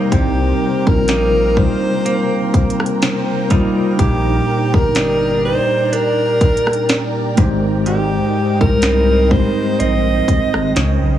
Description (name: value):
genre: contemporary R&B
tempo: 62 BPM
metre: 4/4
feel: swing 54% on 16ths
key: unclear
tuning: A4 = 441 Hz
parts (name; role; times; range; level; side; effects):
- mellow tine electric piano; accompaniment; 0.0-10.8 s; C3 to C5; -20 LUFS; left 1 dB; medium stereo tremolo
- ethereal airy pad; sustained chords; 0.0-11.2 s; Bb4 to Bb5; -26 LUFS; left 2 dB; ensemble chorus, built-in reverb, sidechain pumping
- direct-recorded clean electric guitar; arpeggios; 0.0-11.2 s; Ab2 to Eb4; -21 LUFS; right 3 dB; none
- warm alto saxophone; melody; 0.1-11.2 s; G4 to Eb5; -19 LUFS; equal; tape echo
- saturated sub bass; bass; 0.1-11.2 s; G1 to Db2; -19 LUFS; equal; none
- trap drum kit; drums; 0.1-11.0 s; hi-hat, kick drum, rim click, snare drum; -17 LUFS; equal; none
room: light reverb, digital ambience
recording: heavily compressed radio sound, multiband compression, small room ambience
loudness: -13 LUFS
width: side -11 dB against mid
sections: 0.0-11.2 A section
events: none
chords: 0.0 Cm7; 4.0 Ebmaj7; 7.4 Abmaj7